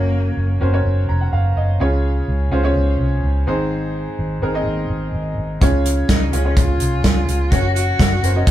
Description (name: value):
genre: piano-driven pop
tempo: 126 BPM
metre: 4/4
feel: straight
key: Db major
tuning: A4 = 440 Hz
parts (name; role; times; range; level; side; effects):
- rich cello; melody; 0.0-0.6, 6.1-8.5 s; Bb3 to Gb4; -24 LUFS; left 2 dB; none
- bright upright piano; accompaniment; 0.0-8.5 s; Ab2 to Bb5; -22 LUFS; right 1 dB; none
- vintage muted fingered electric bass; bass; 0.0-8.5 s; F1 to Db2; -18 LUFS; equal; none
- natural country drum kit; drums; 5.6-8.5 s; hi-hat, kick drum, snare drum; -17 LUFS; equal; none
room: moderate studio reverb, RT60 0.6 s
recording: band playing live in one room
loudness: -16 LUFS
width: side -12 dB against mid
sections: 0.0-8.5 A section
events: upright piano fill 0.9-1.8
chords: 0.0 Gb; 1.8 Db; 3.5 Ab; 5.6 Db; 7.5 Gb